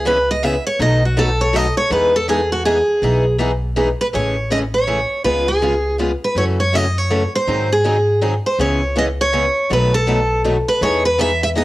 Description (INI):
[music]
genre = acoustic string swing (jazz manouche)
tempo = 162 BPM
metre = 3/4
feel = swing 62% on 8ths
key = E major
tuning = A4 = 439 Hz
[part]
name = picked steel-string acoustic guitar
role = melody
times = 0.0-11.6 s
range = F#4 to E5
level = -17 LUFS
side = right 1 dB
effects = cassette tape
[part]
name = upright bass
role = bass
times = 0.0-11.6 s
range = A1 to G#2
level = -21 LUFS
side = equal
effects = none
[part]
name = picked acoustic archtop guitar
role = accompaniment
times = 0.1-11.6 s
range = B2 to A4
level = -25 LUFS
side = right 3 dB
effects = cassette tape, plate reverb
[part]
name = picked steel-string acoustic guitar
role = accompaniment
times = 0.1-11.6 s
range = B2 to G#4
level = -22 LUFS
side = left 3 dB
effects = cassette tape, plate reverb
[sound]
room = moderate studio reverb, RT60 0.6 s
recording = home recording on cassette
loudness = -15 LUFS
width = side -17 dB against mid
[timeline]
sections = 0.0-4.1 A section; 4.1-11.6 B section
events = steel-string acoustic guitar solo 0.0-4.1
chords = 0.0 C#m7; 0.8 B7; 1.9 Emaj7; 4.1 Amaj7; 5.2 C#7; 6.4 F#m7; 7.5 G#7; 8.6 C#m7; 9.7 B7; 10.8 Emaj7